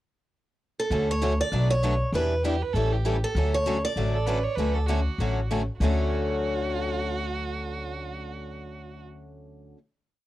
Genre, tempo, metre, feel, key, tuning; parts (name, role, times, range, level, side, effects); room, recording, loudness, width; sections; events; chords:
acoustic string swing (jazz manouche); 196 BPM; 4/4; swing 59% on 8ths; D major; A4 = 438 Hz
picked steel-string acoustic guitar; melody; 0.8-5.5 s; A4 to D5; -28 LUFS; right 2 dB; cassette tape
picked steel-string acoustic guitar; accompaniment; 0.9-9.8 s; B2 to A4; -32 LUFS; left 6 dB; cassette tape
picked steel-string acoustic guitar; accompaniment; 0.9-9.8 s; B2 to B4; -34 LUFS; right 5 dB; cassette tape
upright bass; bass; 0.9-9.7 s; A1 to E2; -27 LUFS; equal
warm violin; second line; 2.4-9.0 s; F#4 to C#5; -34 LUFS; right 6 dB; cassette tape
little or no reverb; home recording on cassette; -24 LUFS; side -15 dB against mid
0.0-0.9 pickup bar; 0.9-5.8 A section; 5.8-8.3 final chord
0.0 N.C.; 0.9 Dmaj7; 1.5 Bm9; 2.1 Em7; 2.7 A7; 3.4 Dmaj7